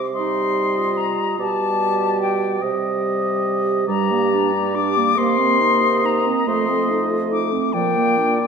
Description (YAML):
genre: classical, slow romantic movement for wind quintet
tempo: 47 BPM (dotted quarters)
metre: 6/8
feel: rubato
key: unclear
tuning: A4 = 440 Hz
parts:
  - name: bright concert flute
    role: melody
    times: 0.0-8.5 s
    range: G5 to D6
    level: -21 LUFS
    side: left 6 dB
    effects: none
  - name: dark bassoon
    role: bass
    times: 0.0-8.5 s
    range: F2 to C3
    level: -24 LUFS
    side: right 4 dB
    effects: none
  - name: mellow French horn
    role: accompaniment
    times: 0.1-8.5 s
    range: G3 to Bb3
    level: -24 LUFS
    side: left 1 dB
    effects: none
  - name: warm oboe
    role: second line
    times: 0.2-8.5 s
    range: D5 to Eb5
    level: -26 LUFS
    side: left 1 dB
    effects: none
  - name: warm clarinet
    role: accompaniment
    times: 0.2-8.5 s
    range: F3 to G4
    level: -25 LUFS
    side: right 8 dB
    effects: none
room: wet scoring stage reverb, RT60 1.5 s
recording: minimal, uncompressed stereo recording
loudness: -17 LUFS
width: side -6 dB against mid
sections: 0.0-8.5 A section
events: none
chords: 0.0 Cm; 1.4 G/B; 2.6 Cm; 3.9 Gm; 5.2 Cm7; 6.5 F7; 7.7 Bb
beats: 0.14 | 1.39 2.62 | 3.89 5.17 | 6.48 7.75